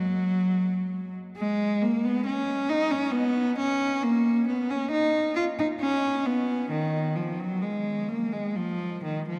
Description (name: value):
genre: classical, baroque-style suite movement for unaccompanied cello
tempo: 67 BPM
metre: 3/4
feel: rubato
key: unclear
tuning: A4 = 439 Hz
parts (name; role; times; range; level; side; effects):
- rich cello; solo; 0.0-9.4 s; D#3 to E#4; -27 LUFS; equal; none
room: wet cathedral reverb, RT60 5.9 s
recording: dark, warm production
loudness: -27 LUFS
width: mono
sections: 0.0-9.4 A section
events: none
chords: none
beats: 0.48 | 1.37 2.26 3.14 | 4.04 4.92 5.81 | 6.70 7.62 8.54